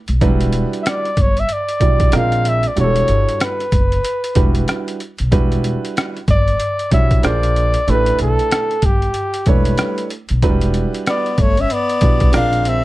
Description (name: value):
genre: hip hop, jazz-hop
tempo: 94 BPM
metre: 4/4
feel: swing 60% on 16ths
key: E dorian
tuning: A4 = 440 Hz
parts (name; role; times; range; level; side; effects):
- upright bass; bass; 0.1-12.8 s; E1 to B1; -18 LUFS; equal; none
- trip hop sampler-style drum kit; drums; 0.1-12.8 s; hi-hat, kick drum, rim click; -17 LUFS; equal; overdrive
- warm baby grand piano; accompaniment; 0.2-12.8 s; F#3 to D5; -22 LUFS; right 4 dB; none
- mellow flugelhorn; melody; 0.8-12.8 s; G4 to E#5; -19 LUFS; equal; none
- clear tenor saxophone; second line; 9.5-12.8 s; G3 to D4; -23 LUFS; left 3 dB; none
room: light reverb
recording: dark, warm production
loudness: -14 LUFS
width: side -17 dB against mid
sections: 0.0-5.3 A section; 5.3-12.8 A section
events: none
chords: 0.2 Em9; 2.1 A#9; 2.8 Em11; 5.3 Em9; 7.2 A#9; 7.9 A9sus4; 10.4 Em9; 12.3 A#9